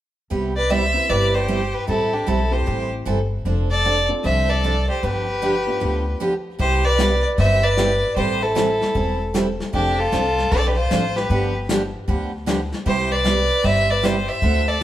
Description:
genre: country, western swing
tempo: 153 BPM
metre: 4/4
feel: swing 65% on 8ths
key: C major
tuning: A4 = 438 Hz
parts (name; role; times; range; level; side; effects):
- picked steel-string acoustic guitar; accompaniment; 0.3-14.8 s; C3 to A4; -25 LUFS; right 2 dB; none
- upright bass; bass; 0.3-14.8 s; E1 to D2; -23 LUFS; left 1 dB; none
- rich fiddle; melody; 0.6-14.8 s; G4 to E5; -21 LUFS; equal; none
- warm fiddle; second line; 0.6-14.8 s; D4 to C5; -26 LUFS; right 2 dB; none
- dark upright piano; accompaniment; 0.9-6.2 s; B3 to B4; -31 LUFS; left 2 dB; none
- vintage brush drum kit; drums; 6.6-14.8 s; brushed snare drum, hi-hat, kick drum, snare drum; -26 LUFS; left 2 dB; none
room: moderate stone room reverb, RT60 1.4 s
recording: band playing live in one room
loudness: -18 LUFS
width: side -13 dB against mid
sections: 0.3-6.6 A section; 6.6-14.8 B section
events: none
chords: 0.3 Cmaj7; 1.9 Am7; 3.5 F6; 5.0 G7; 6.6 Cmaj7; 8.2 Am7; 9.7 F6; 11.3 G7; 12.9 Cmaj7

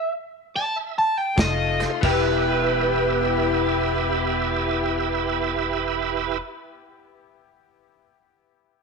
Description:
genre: electric blues shuffle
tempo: 90 BPM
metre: 4/4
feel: swing 65% on 8ths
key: E minor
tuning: A4 = 440 Hz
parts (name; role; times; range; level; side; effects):
- biting overdriven guitar; melody; 0.0-1.8 s; Eb5 to A5; -23 LUFS; right 1 dB; phaser
- bright tonewheel organ; accompaniment; 0.5-6.4 s; E4 to C6; -26 LUFS; right 12 dB; slow rotary speaker, overdrive, chorus vibrato
- clear horn section; stabs; 1.4-6.4 s; A3 to G4; -29 LUFS; left 12 dB; tape echo
- upright bass; bass; 1.4-6.4 s; E1 to F1; -29 LUFS; equal; none
- warm soul drum kit; drums; 1.4-2.2 s; crash cymbal, hi-hat, kick drum, snare drum; -25 LUFS; equal; none
- overdriven slide guitar; second line; 2.0-6.4 s; B4; -26 LUFS; right 11 dB; none
- electric guitar through a small old amp; riff; 2.0-6.4 s; E3 to G4; -27 LUFS; left 15 dB; analog chorus
room: moderate plate reverb, RT60 1.9 s, small room ambience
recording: 1960s-style stereo with parts hard left and right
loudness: -20 LUFS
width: side -4 dB against mid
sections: 0.0-2.0 A section; 2.0-7.4 B section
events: slowing down 0.0-2.0; stop 0.0-1.4; tonewheel organ fill 0.2-2.0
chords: 0.0 Em; 1.4 F7; 2.0 Em

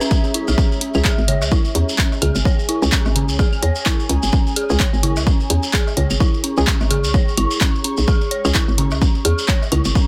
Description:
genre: minimal techno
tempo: 128 BPM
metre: 4/4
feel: swing 58% on 16ths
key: C# minor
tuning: A4 = 438 Hz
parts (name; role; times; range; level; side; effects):
- dark detuned synth bell; riff; 0.0-10.0 s; C#4 to C#5; -27 LUFS; equal; chorus, sidechain pumping, dub echo
- shekere; percussion; 0.0-10.1 s; none; -31 LUFS; equal; none
- granular cloud pad; texture; 0.0-10.1 s; G#4 to C#6; -31 LUFS; equal; built-in reverb, sidechain pumping
- electronic kick drum; drums; 0.1-10.1 s; none; -20 LUFS; equal; none
- punchy analog drum machine; drums; 0.3-9.8 s; handclaps, hi-hat; -23 LUFS; equal; none
- hollow knocking FM bass; bass; 0.5-9.9 s; G#1 to E2; -21 LUFS; equal; tube saturation, sidechain pumping
- filtered dub chord stab; stabs; 0.9-8.5 s; G#3 to G#4; -28 LUFS; equal; chorus, tape echo
- claves, congas and woodblock; percussion; 0.9-9.8 s; none; -29 LUFS; equal; none
room: digital ambience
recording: none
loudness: -18 LUFS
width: mono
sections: 0.0-10.1 A section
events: none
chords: 0.0 C#5

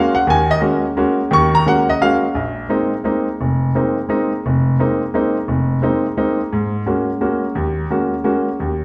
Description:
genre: jazz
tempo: 173 BPM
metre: 3/4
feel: swing 63% on 8ths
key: unclear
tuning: A4 = 442 Hz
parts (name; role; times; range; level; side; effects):
- clear baby grand piano; solo; 0.0-8.8 s; F1 to Db6; -18 LUFS; equal; none
room: wet large studio reverb, RT60 1.5 s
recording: heard from further back in the room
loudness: -18 LUFS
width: mono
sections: 0.0-2.3 A section; 2.3-8.8 B section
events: none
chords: 0.0 Ab9sus4; 2.3 Bb9sus4; 6.5 Ab9sus4

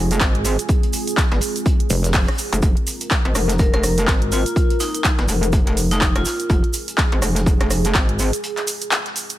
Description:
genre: bass house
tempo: 124 BPM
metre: 4/4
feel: swing 59% on 16ths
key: F minor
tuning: A4 = 440 Hz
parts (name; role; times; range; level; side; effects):
- dark analog pad; sustained chords; 0.0-9.4 s; Ab3 to Bb4; -28 LUFS; equal; chorus, sidechain pumping
- metallic wobble bass; bass; 0.0-8.3 s; F1 to Ab1; -20 LUFS; equal; chorus, overdrive, sidechain pumping
- house drum kit; drums; 0.1-9.4 s; handclaps, hi-hat, rim click; -23 LUFS; equal; overdrive
- cabasa; percussion; 0.1-9.4 s; none; -29 LUFS; right 3 dB; none
- electronic kick drum; drums; 0.2-8.1 s; none; -18 LUFS; equal; overdrive
- vintage drum kit; drums; 0.2-9.3 s; hi-hat, snare drum; -34 LUFS; equal; sidechain pumping on hats, high-pass filter on hats, high-pass filter on snare, high-pass filter on room
- pulsing pluck wobble bass; bass; 1.9-2.3 s; F1; -18 LUFS; equal; chorus, overdrive, sidechain pumping
- vibraphone with hard mallets; melody; 3.6-6.6 s; Eb4 to Bb4; -25 LUFS; right 1 dB; ping-pong delay
room: small room ambience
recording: none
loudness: -16 LUFS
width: side -14 dB against mid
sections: 0.0-9.4 A section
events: break 8.4-9.4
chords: 0.0 Fm

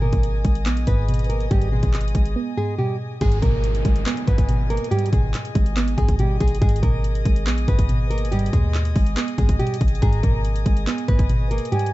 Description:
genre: hip hop, trap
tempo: 141 BPM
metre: 4/4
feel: half-time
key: G# harmonic minor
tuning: A4 = 437 Hz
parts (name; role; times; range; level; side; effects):
- nylon-string guitar; melody; 0.0-11.9 s; G3 to B4; -28 LUFS; right 2 dB; none
- soft round pluck; accompaniment; 0.0-11.9 s; G#2 to B3; -24 LUFS; right 2 dB; chorus
- warm studio string section; sustained chords; 0.0-11.9 s; G#4 to D#6; -34 LUFS; left 3 dB; none
- warm 808-style bass; bass; 0.0-11.6 s; G#1 to D#2; -22 LUFS; equal; none
- trap drum kit; drums; 0.1-11.9 s; handclaps, hi-hat, kick drum; -21 LUFS; equal; overdrive
- downlifter; sound effects; 3.2-6.6 s; none; -36 LUFS; equal; none
- mellow hollow jazz flute; second line; 10.0-11.9 s; G#5 to A#5; -33 LUFS; left 3 dB; digital delay
room: studio reverb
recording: dark, warm production, nothing above 7.9 kHz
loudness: -18 LUFS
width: side -17 dB against mid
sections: 0.0-3.2 A section; 3.2-11.9 B section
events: break 2.4-3.2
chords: 0.0 G#m

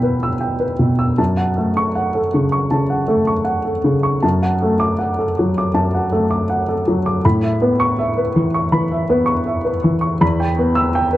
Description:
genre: neoclassical minimalist piano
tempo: 80 BPM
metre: 4/4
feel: rubato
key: unclear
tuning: A4 = 441 Hz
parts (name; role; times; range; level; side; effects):
- dark baby grand piano; solo; 0.0-11.2 s; E2 to E6; -15 LUFS; equal; tape echo
room: small room ambience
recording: dry, close 1970s-style studio recording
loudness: -15 LUFS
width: side -15 dB against mid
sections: 0.0-11.2 A section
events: none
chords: 0.0 Em; 1.2 F#m; 4.2 D/F#; 7.2 Aadd9; 10.2 Em

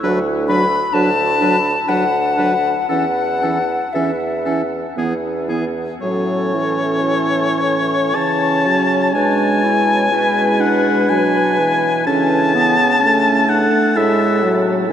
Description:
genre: classical, slow romantic movement for wind quintet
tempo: 54-67 BPM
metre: 3/4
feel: rubato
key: A major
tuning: A4 = 440 Hz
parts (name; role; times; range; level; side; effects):
- clear oboe; second line; 0.0-14.6 s; G#4 to A5; -19 LUFS; left 2 dB; none
- clear clarinet; accompaniment; 0.0-14.9 s; B3 to E4; -21 LUFS; right 4 dB; none
- warm French horn; accompaniment; 0.0-14.9 s; E3 to A3; -21 LUFS; left 1 dB; none
- mellow bassoon; bass; 0.0-14.9 s; D2 to C#3; -22 LUFS; right 3 dB; none
- silver concert flute; melody; 0.5-14.9 s; A4 to B5; -21 LUFS; left 4 dB; none
room: wet huge ambient reverb, RT60 8.0 s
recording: in a vast, echoing space, nothing above 10.7 kHz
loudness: -14 LUFS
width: side -9 dB against mid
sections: 0.0-6.0 A section; 6.0-14.9 B section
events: none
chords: 0.0 Bm7/D; 2.9 A/E; 5.0 E; 6.0 A; 9.1 E7/B; 12.1 A/C#

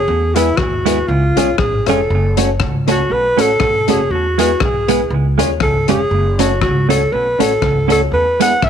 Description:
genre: ska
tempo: 120 BPM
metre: 4/4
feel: swing 56% on 8ths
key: unclear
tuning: A4 = 436 Hz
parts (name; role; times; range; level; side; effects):
- breathy alto saxophone; melody; 0.0-8.7 s; E4 to F#5; -16 LUFS; right 1 dB; none
- upright bass; bass; 0.0-8.7 s; E#1 to E2; -19 LUFS; equal; none
- warm upright piano; stabs; 0.3-8.5 s; B3 to C#5; -21 LUFS; left 12 dB; none
- clean electric guitar; accompaniment; 0.4-8.5 s; G#3 to A4; -20 LUFS; right 14 dB; tape echo
- crunchy breakbeat drum kit; drums; 0.4-8.7 s; hi-hat, kick drum, rim click; -20 LUFS; left 5 dB; none
room: light reverb, small room ambience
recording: 1960s-style stereo with parts hard left and right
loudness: -12 LUFS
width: side -8 dB against mid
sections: 0.0-8.7 A section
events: alto saxophone solo 0.0-8.7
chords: 0.1 E; 1.1 C#; 2.1 F#m; 4.1 E; 5.1 C#; 6.1 F#m; 8.1 E

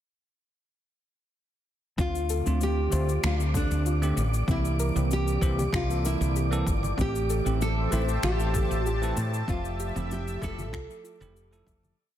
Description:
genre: sunset chillout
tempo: 96 BPM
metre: 4/4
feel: straight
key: D minor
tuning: A4 = 442 Hz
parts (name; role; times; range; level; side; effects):
- nylon-string guitar; melody; 2.0-11.6 s; D4 to A4; -32 LUFS; equal; tape echo, shimmer reverb
- bell-like tine electric piano; accompaniment; 2.0-12.0 s; D3 to E5; -33 LUFS; moving between left 5 dB and right 4 dB; auto-pan, shimmer reverb
- soft round pluck; arpeggios; 2.0-11.8 s; C4 to E5; -37 LUFS; left 2 dB; chorus, tape echo, shimmer reverb
- woody fretless electric bass; bass; 2.0-11.9 s; F1 to A2; -27 LUFS; equal; none
- electronic cabasa and finger snaps; drums; 2.0-12.0 s; none; -38 LUFS; left 5 dB; overdrive, small room ambience, soft clipping on snare
- electronic kick drum; drums; 2.0-11.8 s; none; -30 LUFS; equal; small room ambience
- wind-like tuned noise texture; texture; 2.4-12.0 s; D5 to D6; -39 LUFS; left 1 dB; built-in reverb, shimmer reverb
- congas; percussion; 3.2-12.0 s; none; -37 LUFS; right 4 dB; none
- lush unison pad; sustained chords; 7.5-12.0 s; G4 to A5; -35 LUFS; equal; chorus, shimmer reverb
room: light reverb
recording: dense, heavily limited modern master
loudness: -24 LUFS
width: side -11 dB against mid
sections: 2.0-12.0 groove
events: fade-out 8.7-12.0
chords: 2.0 Dm7; 4.5 C7; 7.0 Am7; 9.5 Fmaj9

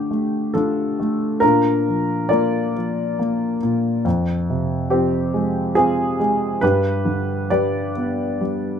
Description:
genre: classical, lyrical solo piano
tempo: 69 BPM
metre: 3/4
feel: rubato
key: unclear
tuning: A4 = 437 Hz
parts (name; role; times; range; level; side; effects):
- dark concert grand piano; solo; 0.0-8.8 s; F2 to D5; -18 LUFS; equal; none
room: light reverb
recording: minimal, uncompressed stereo recording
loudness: -18 LUFS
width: side -7 dB against mid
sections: 0.0-8.8 A section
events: none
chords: 0.0 Dm; 1.4 Bb; 4.1 Fm; 6.6 G

